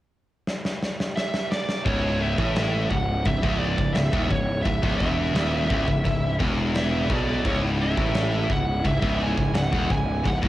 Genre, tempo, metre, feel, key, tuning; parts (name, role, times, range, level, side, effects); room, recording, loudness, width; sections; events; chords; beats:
heavy metal; 86 BPM; 4/4; straight; C# minor; A4 = 440 Hz
big rock drum kit; drums; 0.5-10.5 s; crash cymbal, kick drum, snare drum; -27 LUFS; equal; cassette tape
high-gain lead guitar; melody; 1.2-10.4 s; C#5 to G#5; -29 LUFS; right 2 dB; distortion, tape echo
dark symphonic string section; sustained chords; 1.9-10.5 s; C#3 to E4; -35 LUFS; equal
heavy high-gain guitar; riff; 1.9-10.5 s; C#2 to B2; -30 LUFS; right 5 dB; distortion
scooped high-gain guitar; riff; 1.9-10.5 s; C#2 to B2; -29 LUFS; left 5 dB; distortion
fuzz picked electric bass; bass; 1.9-10.5 s; C#1 to B1; -26 LUFS; equal; overdrive
little or no reverb; home recording on cassette; -21 LUFS; side -15 dB against mid
0.0-1.9 A section; 1.9-10.5 B section
drum fill 0.5-1.9
0.0 N.C.; 1.9 C#m
0.47 1.17 | 1.86 2.56 3.26 3.96 | 4.65 5.35 6.05 6.75 | 7.45 8.15 8.85 9.55 | 10.25